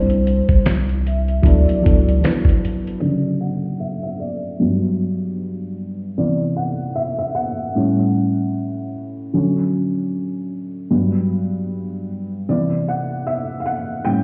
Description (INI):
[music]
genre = lo-fi hip hop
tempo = 76 BPM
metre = 4/4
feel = swing 58% on 16ths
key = D major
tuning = A4 = 440 Hz
[part]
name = vibraphone with soft mallets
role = melody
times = 0.0-2.2 s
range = C5 to E5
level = -28 LUFS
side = equal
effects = low-pass filter
[part]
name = felt-muted upright piano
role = accompaniment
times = 0.0-14.2 s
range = G2 to G5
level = -22 LUFS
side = equal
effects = low-pass filter
[part]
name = round analog bass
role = bass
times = 0.0-2.2 s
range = C2 to D2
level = -20 LUFS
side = equal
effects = none
[part]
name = lo-fi sampler-style drum kit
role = drums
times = 0.1-3.0 s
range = hi-hat, kick drum, snare drum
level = -18 LUFS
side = equal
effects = none
[sound]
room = light reverb, studio reverb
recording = heard muffled through a wall, cassette tape, stone room reverb, EQ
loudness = -20 LUFS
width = mono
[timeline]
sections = 0.0-3.0 A section; 3.0-14.2 B section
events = felt piano solo 3.0-14.2; filter sweep on felt piano 3.0-14.2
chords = 0.0 Cadd9; 1.4 D6; 3.0 Dmaj7; 4.6 Gmaj7; 6.2 Cmaj7; 7.8 A7; 9.3 Dmaj7; 10.9 Gmaj7; 12.5 Cmaj7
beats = 0.65 1.44 2.23 | 3.02 3.81 4.60 5.39 | 6.18 6.97 7.76 8.54 | 9.34 10.12 10.91 11.70 | 12.49 13.28 14.07